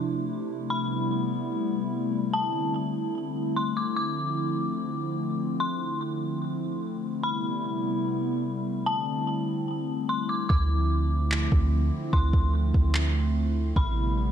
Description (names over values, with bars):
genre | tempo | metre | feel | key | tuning
hip hop, atmospheric cloud-rap | 147 BPM | 4/4 | half-time | D dorian | A4 = 441 Hz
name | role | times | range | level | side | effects
hollow soft pad | sustained chords | 0.0-14.3 s | C3 to E4 | -28 LUFS | equal | chorus, sidechain pumping
dark detuned synth bell | melody | 0.7-14.3 s | A5 to D6 | -32 LUFS | left 2 dB | chorus, digital delay
clean 808-style bass | bass | 10.5-14.3 s | A1 to D2 | -24 LUFS | equal | none
smooth R&B drum kit | drums | 10.5-13.9 s | handclaps, kick drum | -26 LUFS | right 1 dB | vintage 12-bit sampler grit
room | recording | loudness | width
digital ambience | none | -25 LUFS | side -9 dB against mid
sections
0.0-14.3 A section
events
hi-hats muted 10.5-14.3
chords
0.0 Dm9; 0.7 Am9; 2.3 C69; 4.0 Dm9; 7.2 Am9; 8.9 C69; 10.5 Dm9; 13.8 Am9